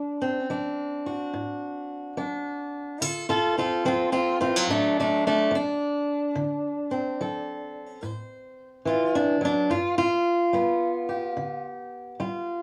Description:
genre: acoustic country blues, solo or duo.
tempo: 72 BPM.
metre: 4/4.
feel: swing 66% on 8ths.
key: D mixolydian.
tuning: A4 = 436 Hz.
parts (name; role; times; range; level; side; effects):
fingerpicked swing-style acoustic guitar; solo; 0.0-12.6 s; G2 to C5; -27 LUFS; equal; none.
room: moderate studio reverb, RT60 0.5 s.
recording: studio ambience.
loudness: -26 LUFS.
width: mono.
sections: 0.0-12.6 A section.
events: none.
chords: 0.0 D7; 9.7 G7.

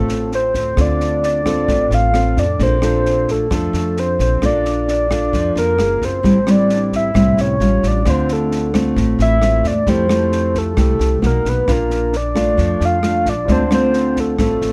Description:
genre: bossa nova.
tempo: 132 BPM.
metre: 4/4.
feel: straight.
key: unclear.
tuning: A4 = 440 Hz.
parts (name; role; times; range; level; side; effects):
soft octave-layered synth lead; melody; 0.0-14.7 s; A4 to F5; -21 LUFS; equal; chorus.
nylon-string guitar; accompaniment; 0.0-14.7 s; A2 to A4; -20 LUFS; equal; none.
upright bass; bass; 0.0-14.7 s; Gb1 to F2; -23 LUFS; equal; none.
compact cocktail drum kit; drums; 0.1-14.7 s; kick drum, rim click, snare drum; -27 LUFS; equal; none.
warm concert grand piano; accompaniment; 13.5-14.7 s; F4 to A5; -30 LUFS; equal; none.
room: light reverb.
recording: none.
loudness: -16 LUFS.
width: mono.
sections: 0.0-14.7 A section.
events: none.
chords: 0.0 Dm7; 2.6 Bbmaj7; 5.8 Gbmaj9; 6.2 A7#9; 7.6 A7b13; 8.1 Dm7; 9.9 Fmaj9; 11.2 Bmaj7; 11.7 Bbmaj7; 13.5 Dm7.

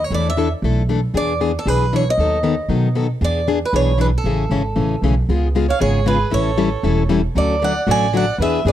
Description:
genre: acoustic string swing (jazz manouche).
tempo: 232 BPM.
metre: 4/4.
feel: swing 58% on 8ths.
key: A major.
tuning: A4 = 440 Hz.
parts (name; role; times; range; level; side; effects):
picked swing-style acoustic guitar; melody; 0.0-8.7 s; A4 to G#5; -21 LUFS; right 3 dB; none.
upright bass; bass; 0.0-8.7 s; E1 to B2; -19 LUFS; right 1 dB; none.
picked plugged-in steel-string acoustic guitar; accompaniment; 0.1-8.7 s; C#3 to A4; -20 LUFS; left 5 dB; none.
warm violin; second line; 5.7-8.7 s; G#4 to D5; -25 LUFS; right 7 dB; none.
room: studio ambience.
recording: dry, close 1970s-style studio recording.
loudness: -15 LUFS.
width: side -11 dB against mid.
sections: 0.0-5.3 A section; 5.3-8.7 B section.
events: none.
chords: 0.1 E7sus4; 1.1 E7; 2.2 B7/D#; 3.2 E7; 4.3 Amaj7; 5.3 C#7; 6.3 A7; 7.4 Dmaj7.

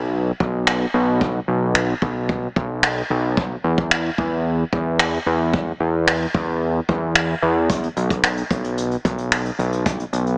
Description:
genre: dance-pop.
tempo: 111 BPM.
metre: 4/4.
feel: straight.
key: unclear.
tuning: A4 = 440 Hz.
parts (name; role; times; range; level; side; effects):
fat analog bass; bass; 0.0-10.4 s; B1 to E2; -20 LUFS; equal; sidechain pumping.
jazz brush drum kit; drums; 0.4-10.4 s; finger snaps, hi-hat, kick drum; -21 LUFS; equal; none.
room: light reverb.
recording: heavily compressed radio sound, multiband compression, small speaker sound.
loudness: -18 LUFS.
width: side -34 dB against mid.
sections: 0.0-10.4 A section.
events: none.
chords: none.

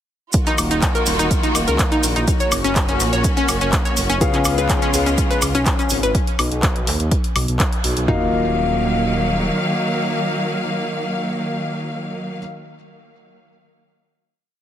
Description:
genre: progressive house.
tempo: 124 BPM.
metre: 4/4.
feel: straight.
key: Eb minor.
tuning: A4 = 440 Hz.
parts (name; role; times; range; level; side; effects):
clear studio string section; sustained chords; 0.3-12.4 s; Db3 to F5; -23 LUFS; equal; sidechain pumping.
deep house drum kit; drums; 0.3-8.2 s; kick drum, toms; -20 LUFS; equal; none.
deep house drum kit; drums; 0.3-8.1 s; handclaps, hi-hat, woodblock; -24 LUFS; left 1 dB; none.
maracas; percussion; 0.3-6.1 s; none; -26 LUFS; right 4 dB; none.
analog pluck; arpeggios; 0.5-8.3 s; Db4 to Db5; -23 LUFS; left 1 dB; chorus, sidechain pumping, ping-pong delay.
dark detuned saw bass; bass; 0.6-9.5 s; Eb1 to D#2; -23 LUFS; equal; sidechain pumping.
dark baby grand piano; stabs; 4.2-12.4 s; Db3 to F5; -24 LUFS; left 3 dB; sidechain pumping, ping-pong delay.
room: light reverb.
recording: heavily compressed radio sound, multiband compression.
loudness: -16 LUFS.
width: side -10 dB against mid.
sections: 0.3-8.1 drop; 8.1-12.0 final chord.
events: drop 0.3-8.1; band accent 7.6.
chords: 0.3 Ebmadd9; 2.3 Gb; 4.2 Db7; 6.1 B; 8.1 Ebmadd9.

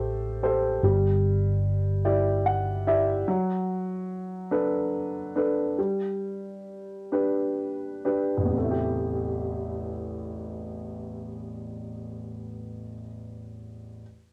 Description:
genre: folk.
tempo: 40-49 BPM (dotted quarters).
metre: 6/8.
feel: straight.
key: A dorian.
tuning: A4 = 440 Hz.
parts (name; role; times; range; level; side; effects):
warm concert grand piano; melody; 0.0-14.0 s; A1 to F#5; -29 LUFS; equal; cassette tape.
mellow fretless electric bass; bass; 0.0-3.2 s; G1 to A1; -28 LUFS; equal; none.
room: light reverb.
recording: home recording on cassette.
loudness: -27 LUFS.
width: mono.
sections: 0.0-8.5 A section; 8.5-11.5 B section.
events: grand piano fill 2.1-3.3; slowing down 3.3-8.5.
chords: 0.0 Am7; 0.8 Em7/G; 3.3 Bm7/F#; 5.8 G; 8.5 Am7.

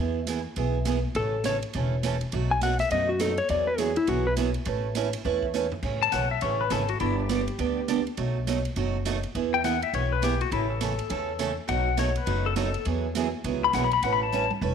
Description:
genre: country, western swing.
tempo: 205 BPM.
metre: 4/4.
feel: swing 62% on 8ths.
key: A major.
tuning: A4 = 440 Hz.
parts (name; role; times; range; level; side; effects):
picked acoustic archtop guitar; accompaniment; 0.0-14.7 s; B2 to B4; -29 LUFS; right 9 dB; none.
upright bass; bass; 0.0-14.7 s; E1 to F#2; -30 LUFS; left 1 dB; none.
swinging big-band drum kit; drums; 0.3-14.7 s; crash cymbal, hi-hat, kick drum, ride cymbal, snare drum, toms; -37 LUFS; right 6 dB; none.
clean lap steel guitar; melody; 1.2-4.3 s; E4 to G#5; -26 LUFS; left 3 dB; none.
pedal steel guitar; second line; 6.0-14.5 s; E4 to B5; -27 LUFS; left 10 dB; none.
room: moderate echo chamber reverb, RT60 1.5 s, studio reverb.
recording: 1960s-style stereo with parts hard left and right.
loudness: -24 LUFS.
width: side -7 dB against mid.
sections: 0.0-5.8 A section; 5.8-14.7 A section.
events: electric slide guitar solo 0.0-5.8; drum fill 5.5, 14.3-14.7; pedal steel guitar solo 5.8-14.7.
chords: 0.0 E; 1.2 A; 2.3 B7; 3.5 Eadd9; 4.7 Aadd9; 5.8 Amaj7; 7.0 G; 8.2 B7; 9.3 E; 10.5 A; 11.7 B7; 12.9 Eadd9; 14.0 Aadd9.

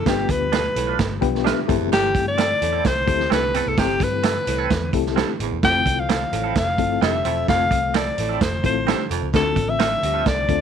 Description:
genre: uptempo 1960s-style soul.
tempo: 129 BPM.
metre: 4/4.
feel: straight.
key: unclear.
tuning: A4 = 441 Hz.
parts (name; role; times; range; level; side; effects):
breathy alto saxophone; melody; 0.0-10.6 s; G4 to G5; -22 LUFS; left 2 dB; none.
mellow tonewheel organ; sustained chords; 0.0-10.6 s; B2 to D4; -35 LUFS; left 13 dB; none.
reed electric piano; accompaniment; 0.1-10.6 s; G2 to G5; -25 LUFS; left 16 dB; fast tremolo.
clear baritone saxophone; riff; 0.1-10.2 s; D2 to C3; -29 LUFS; right 14 dB; none.
vintage muted picked electric bass; bass; 0.1-10.6 s; E1 to G2; -27 LUFS; left 1 dB; none.
vintage drum kit; drums; 0.1-10.6 s; hi-hat, kick drum, snare drum; -23 LUFS; right 4 dB; none.
twangy electric guitar; stabs; 0.5-10.2 s; C4 to B4; -28 LUFS; right 14 dB; tremolo.
room: studio reverb.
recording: 1960s-style stereo with parts hard left and right.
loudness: -18 LUFS.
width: side -8 dB against mid.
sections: 0.0-10.6 A section.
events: reed electric piano fill 1.0-1.9.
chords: 0.0 G7; 1.7 C6; 5.6 Fmaj7; 9.3 Dm7.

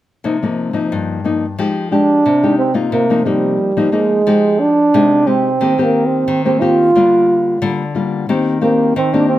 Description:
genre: samba.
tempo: 90 BPM.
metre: 4/4.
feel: straight.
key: C minor.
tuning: A4 = 439 Hz.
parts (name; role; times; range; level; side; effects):
nylon-string guitar; accompaniment; 0.2-9.4 s; G2 to G4; -16 LUFS; left 4 dB; none.
breathy trombone; melody; 1.9-9.4 s; G3 to F4; -13 LUFS; right 2 dB; plate reverb.
room: moderate studio reverb, RT60 0.6 s.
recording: none.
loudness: -12 LUFS.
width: side -14 dB against mid.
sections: 0.2-2.9 A section; 2.9-9.4 B section.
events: none.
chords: 0.2 Cm7; 1.6 Fm9; 2.9 Cm7; 4.3 Fm9; 5.6 Cm7/Eb; 6.9 Gm7/D; 8.3 Cm7/Eb.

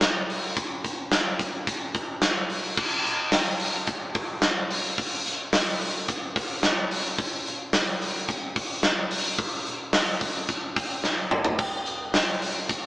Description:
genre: indie pop.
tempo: 109 BPM.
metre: 4/4.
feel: straight.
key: none.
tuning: none.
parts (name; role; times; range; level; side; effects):
big rock drum kit; drums; 0.0-12.8 s; crash cymbal, hi-hat, kick drum, snare drum, splash cymbal, toms; -23 LUFS; equal; none.
room: light reverb.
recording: band playing live in one room, small speaker sound.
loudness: -24 LUFS.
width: side -20 dB against mid.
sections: 0.0-2.8 A section; 2.8-12.9 B section.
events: drum fill 11.0-11.6.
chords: none.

